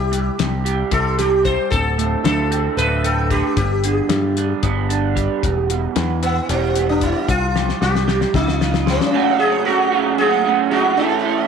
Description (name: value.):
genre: psychedelic rock.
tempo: 226 BPM (eighths).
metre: 7/8.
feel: straight.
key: unclear.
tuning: A4 = 440 Hz.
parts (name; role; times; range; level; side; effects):
sitar; melody; 0.0-11.5 s; B3 to C5; -20 LUFS; left 2 dB; tape echo.
electric guitar through a small old amp; riff; 0.0-11.5 s; D2 to A4; -20 LUFS; right 10 dB; flanger.
picked electric bass; bass; 0.0-9.0 s; D1 to G2; -21 LUFS; left 2 dB; none.
cloth-damped thuddy drum kit; drums; 0.1-9.1 s; hi-hat, kick drum, snare drum; -23 LUFS; left 7 dB; none.
room: light reverb.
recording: 1960s-style stereo with parts hard left and right.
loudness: -16 LUFS.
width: side -6 dB against mid.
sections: 0.0-9.1 A section; 9.1-11.5 B section.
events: drum fill 7.5-9.1.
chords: 0.0 C5; 1.7 D5; 3.6 G; 5.4 Em; 7.3 C5; 8.3 C#; 9.1 F#m.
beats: 0.13 0.39 0.66 0.92 1.19 1.45 | 1.72 1.98 2.25 2.51 2.78 3.04 3.31 | 3.58 3.84 4.11 4.37 4.63 4.90 5.17 | 5.43 5.70 5.96 6.22 6.49 6.75 7.02 | 7.28 7.55 7.81 8.08 8.34 8.61 8.87 | 9.13 9.40 9.66 9.93 10.19 10.45 10.72 | 10.98 11.24.